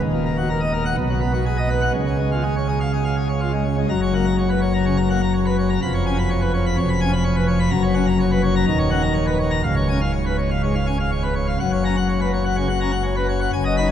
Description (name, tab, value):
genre	classical, organ toccata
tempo	125 BPM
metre	4/4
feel	straight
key	F# major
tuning	A4 = 440 Hz
part	pipe organ, plenum	solo	0.0-13.9 s	C#1 to B5	-18 LUFS	equal	none
room	wet cathedral reverb, RT60 6.3 s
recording	dark, warm production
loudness	-18 LUFS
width	side -9 dB against mid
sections	0.0-3.9 A section; 3.9-13.9 B section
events	none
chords	0.0 D#m; 1.0 G#m7/B; 1.9 C#; 3.9 F#; 5.8 C#7/E#; 7.7 F#; 8.7 D#m7; 9.6 C#; 11.6 F#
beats	| 0.02 0.50 0.97 1.45 | 1.94 2.43 2.92 3.41 | 3.90 4.38 4.86 5.34 | 5.82 6.30 6.77 7.25 | 7.72 8.20 8.67 9.15 | 9.64 10.13 10.62 11.11 | 11.60 12.09 12.57 13.05 | 13.52